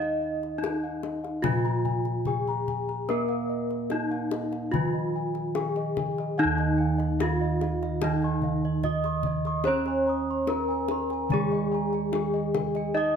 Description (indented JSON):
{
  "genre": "Javanese gamelan",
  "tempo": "73 BPM",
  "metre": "4/4",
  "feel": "straight",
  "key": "Eb slendro",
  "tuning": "A4 = 440 Hz",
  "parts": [
    { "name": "gamelan-type bronze metallophone", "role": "melody", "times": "0.0-13.2 s", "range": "Eb4 to Eb5", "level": "-30 LUFS", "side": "left 1 dB", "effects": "none" },
    { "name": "gamelan-type bronze metallophone", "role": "accompaniment", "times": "0.0-13.2 s", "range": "Eb3 to Eb4", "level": "-31 LUFS", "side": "right 5 dB", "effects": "none" },
    { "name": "gamelan-type bossed gongs", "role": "arpeggios", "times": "0.0-13.2 s", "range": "Eb5 to Db6-45c", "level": "-35 LUFS", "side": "left 5 dB", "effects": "none" },
    { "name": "gamelan-type bossed gongs", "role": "bass", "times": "0.0-13.2 s", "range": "Eb2 to Eb5", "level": "-31 LUFS", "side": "equal", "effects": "none" },
    { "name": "kendang", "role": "percussion", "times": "0.0-12.9 s", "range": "none", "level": "-34 LUFS", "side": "left 6 dB", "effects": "none" },
    { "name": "gamelan-type bronze metallophone", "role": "arpeggios", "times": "6.4-13.2 s", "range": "Eb5 to Eb6", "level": "-37 LUFS", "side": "right 7 dB", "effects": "none" }
  ],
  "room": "moderate recital hall reverb, RT60 1.4 s",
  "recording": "close, detailed microphones",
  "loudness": "-25 LUFS",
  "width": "side -7 dB against mid",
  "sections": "0.0-6.4 A section; 6.4-13.2 A section",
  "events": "none",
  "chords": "none",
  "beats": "0.63 1.45 2.27 | 3.09 3.92 4.74 5.56 | 6.38 7.20 8.03 8.85 | 9.67 10.49 11.31 12.13 | 12.96"
}